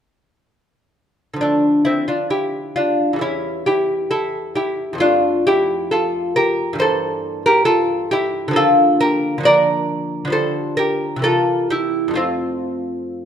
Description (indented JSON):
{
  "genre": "classical, baroque-style dance for lute",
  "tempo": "67 BPM",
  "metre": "4/4",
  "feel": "rubato",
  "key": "D minor, F major from 8.6 s",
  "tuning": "A4 = 440 Hz",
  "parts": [
    { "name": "lute", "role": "solo", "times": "1.3-13.3 s", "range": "E2 to D5", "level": "-16 LUFS", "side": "equal", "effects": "none" }
  ],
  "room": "moderate recital hall reverb, RT60 1.7 s",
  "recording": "minimal, uncompressed stereo recording",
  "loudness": "-16 LUFS",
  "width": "side -8 dB against mid",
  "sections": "1.4-13.3 A section",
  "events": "none",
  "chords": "1.4 Dm; 3.2 A7/E; 5.0 Dm/F; 6.8 Edim/G; 8.6 Bb/D; 10.3 Gm7/D; 11.2 C7; 12.2 F"
}